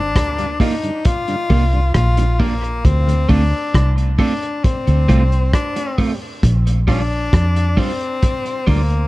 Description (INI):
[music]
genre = dub reggae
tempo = 67 BPM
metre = 4/4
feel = straight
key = G minor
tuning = A4 = 440 Hz
[part]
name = bright tenor saxophone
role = melody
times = 0.0-9.1 s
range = Bb3 to F4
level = -22 LUFS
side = left 3 dB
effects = tape echo
[part]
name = fingered electric bass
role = bass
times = 0.0-9.1 s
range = G1 to F2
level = -15 LUFS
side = equal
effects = none
[part]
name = vintage drum kit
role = drums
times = 0.2-9.1 s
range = hi-hat, kick drum, rim click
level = -19 LUFS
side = equal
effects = none
[part]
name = tonewheel organ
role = accompaniment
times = 0.4-3.1 s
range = D2 to F4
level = -29 LUFS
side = left 1 dB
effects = slow rotary speaker, tape echo
[part]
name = electric guitar at the edge of break-up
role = accompaniment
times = 0.6-8.8 s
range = G3 to F4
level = -24 LUFS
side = right 3 dB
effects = tape echo
[sound]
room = small room ambience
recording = dark, warm production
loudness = -14 LUFS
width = side -19 dB against mid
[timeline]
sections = 0.0-9.1 A section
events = none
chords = 0.0 Gm7; 2.8 Dm7; 6.4 Bb6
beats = 0.16 1.05 1.95 | 2.85 3.74 4.64 5.54 | 6.43 7.33 8.23